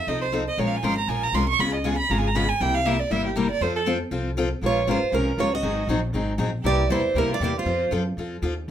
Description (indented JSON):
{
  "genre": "acoustic string swing (jazz manouche)",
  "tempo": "237 BPM",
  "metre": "4/4",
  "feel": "swing 56% on 8ths",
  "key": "Bb minor",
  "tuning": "A4 = 437 Hz",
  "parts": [
    { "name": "warm violin", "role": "second line", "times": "0.0-7.9 s", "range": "Db4 to Db6", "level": "-26 LUFS", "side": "right 4 dB", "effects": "none" },
    { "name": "picked steel-string acoustic guitar", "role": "accompaniment", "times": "0.1-8.7 s", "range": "C3 to Bb4", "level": "-26 LUFS", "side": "left 4 dB", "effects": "none" },
    { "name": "upright bass", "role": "bass", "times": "0.1-8.7 s", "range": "G1 to Gb2", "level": "-27 LUFS", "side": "equal", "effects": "none" },
    { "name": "picked steel-string acoustic guitar", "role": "melody", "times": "4.7-7.9 s", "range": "Bb4 to Eb5", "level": "-24 LUFS", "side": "right 3 dB", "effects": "none" }
  ],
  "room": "moderate studio ambience, RT60 0.5 s",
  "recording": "minimal, uncompressed stereo recording",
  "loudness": "-21 LUFS",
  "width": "side -10 dB against mid",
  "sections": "0.0-4.6 A section; 4.6-8.7 B section",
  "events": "violin solo 0.0-4.6",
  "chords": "0.0 F7; 0.6 Bbm7; 1.6 Db7; 2.6 C7; 3.6 F; 4.6 Bbm7; 5.6 Ab7; 6.7 C7; 7.7 F"
}